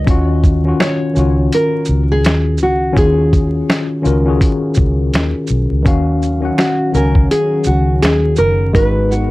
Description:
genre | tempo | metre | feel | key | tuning
lo-fi hip hop | 83 BPM | 4/4 | swing 58% on 16ths | Eb minor | A4 = 440 Hz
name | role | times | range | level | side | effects
nylon-string guitar | melody | 0.0-9.3 s | Gb4 to Eb5 | -17 LUFS | equal | low-pass filter
tine electric piano | accompaniment | 0.0-9.3 s | Eb3 to Ab5 | -17 LUFS | left 2 dB | medium stereo tremolo, cassette tape, low-pass filter
vintage muted fingered electric bass | bass | 0.0-9.3 s | Gb1 to Eb2 | -16 LUFS | equal | none
dusty soul sampler-style drum kit | drums | 0.1-9.3 s | hi-hat, kick drum, shaker, snare drum | -15 LUFS | equal | none
warm analog pad | sustained chords | 5.9-9.3 s | Eb3 to Gb4 | -25 LUFS | right 1 dB | lush chorus, low-pass filter
finger snaps | percussion | 6.6-8.2 s | none | -28 LUFS | right 7 dB | none
room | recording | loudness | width
light reverb | vinyl crackle | -12 LUFS | side -19 dB against mid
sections
0.0-5.9 A section; 5.9-9.3 B section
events
none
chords
0.1 Ebm9; 3.0 Ebm11; 5.9 Ebm9; 8.7 Abm7

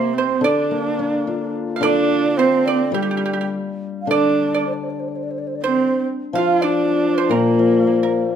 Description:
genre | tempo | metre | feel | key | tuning
chinese traditional, Chinese chamber ensemble | 107 BPM | 2/4 | rubato | unclear | A4 = 440 Hz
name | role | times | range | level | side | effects
mellow low xiao | melody | 0.0-8.3 s | G4 to F5 | -24 LUFS | right 1 dB | none
pipa | second line | 0.0-8.3 s | G4 to F5 | -24 LUFS | right 7 dB | none
warm horsehead fiddle | second line | 0.0-8.3 s | G3 to F4 | -20 LUFS | right 5 dB | none
hammered dulcimer | accompaniment | 0.0-8.4 s | Bb2 to F4 | -21 LUFS | left 5 dB | none
room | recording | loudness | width
light reverb | close, detailed microphones | -16 LUFS | side -8 dB against mid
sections
0.0-4.1 A section; 4.1-8.4 B section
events
none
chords
none

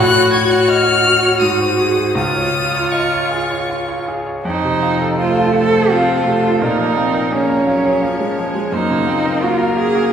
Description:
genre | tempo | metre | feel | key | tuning
classical, slow romantic movement for piano quartet | 78-87 BPM | 3/4 | rubato | unclear | A4 = 440 Hz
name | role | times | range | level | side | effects
clear violin | melody | 0.0-10.1 s | A4 to Ab6 | -20 LUFS | left 4 dB | none
rich cello | second line | 0.0-10.1 s | Db4 to A4 | -18 LUFS | right 2 dB | none
bright grand piano | accompaniment | 0.0-10.1 s | Db2 to Bb5 | -19 LUFS | equal | none
clear viola | accompaniment | 0.0-10.1 s | F3 to Gb4 | -19 LUFS | equal | none
room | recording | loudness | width
wet concert hall reverb, RT60 1.9 s | recorded in a church or concert hall | -13 LUFS | side -8 dB against mid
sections
0.0-4.4 A section; 4.4-10.1 B section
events
none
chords
0.0 Gbm/A; 1.4 Ab7; 2.2 Db; 4.4 F7; 6.6 Bbm7; 8.7 Gbmaj7

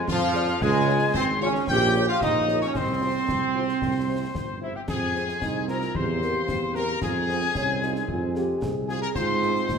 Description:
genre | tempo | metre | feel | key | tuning
military-style march for wind band | 112 BPM | 2/4 | straight | F minor | A4 = 440 Hz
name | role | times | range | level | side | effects
mellow piccolo | second line | 0.0-9.8 s | E5 to G6 | -29 LUFS | left 4 dB | none
bright trombone section | sustained chords | 0.0-9.8 s | F3 to G4 | -28 LUFS | right 3 dB | none
bright trumpet section | melody | 0.1-9.8 s | E4 to G5 | -32 LUFS | left 2 dB | none
mellow tuba | bass | 0.1-9.8 s | G1 to Ab2 | -28 LUFS | right 2 dB | none
concert snare drum, concert bass drum and clash cymbals | drums | 0.1-9.8 s | none | -34 LUFS | left 1 dB | none
mellow French horn section | accompaniment | 0.3-9.5 s | C4 to D5 | -35 LUFS | left 3 dB | none
warm euphonium | second line | 4.9-9.8 s | C4 to Ab4 | -31 LUFS | equal | none
room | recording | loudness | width
wet recital hall reverb, RT60 1.5 s | minimal, uncompressed stereo recording | -22 LUFS | side -6 dB against mid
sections
0.0-4.9 A section; 4.9-9.8 B section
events
none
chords
0.0 Ddim/F; 0.6 Db; 1.7 Gdim/Bb; 2.8 Fm/C; 3.8 C; 4.9 Fm; 6.0 C7/E; 7.0 Fm; 9.2 Ab

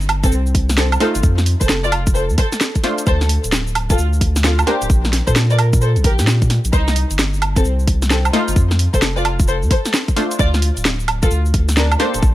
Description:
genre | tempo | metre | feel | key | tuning
UK garage, two-step garage | 131 BPM | 4/4 | swing 64% on 16ths | unclear | A4 = 440 Hz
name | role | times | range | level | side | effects
saturated sub bass | bass | 0.0-12.3 s | D1 to Bb2 | -17 LUFS | equal | none
garage drum kit | drums | 0.0-12.3 s | cabasa, hi-hat, snare drum, woodblock | -20 LUFS | right 1 dB | overdrive
dark studio violin section | melody | 0.2-12.2 s | C4 to D5 | -23 LUFS | left 1 dB | ping-pong delay
electronic kick drum | drums | 0.2-12.3 s | none | -16 LUFS | equal | overdrive
punchy chord stab | stabs | 1.0-12.3 s | A3 to C5 | -21 LUFS | equal | chorus
room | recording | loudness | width
little or no reverb | vinyl crackle | -14 LUFS | side -15 dB against mid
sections
0.0-12.3 A section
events
none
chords
0.0 Cm; 1.2 F7; 3.1 Dm7; 4.9 Bb69; 6.7 Cm; 8.6 F7; 10.4 Dm7

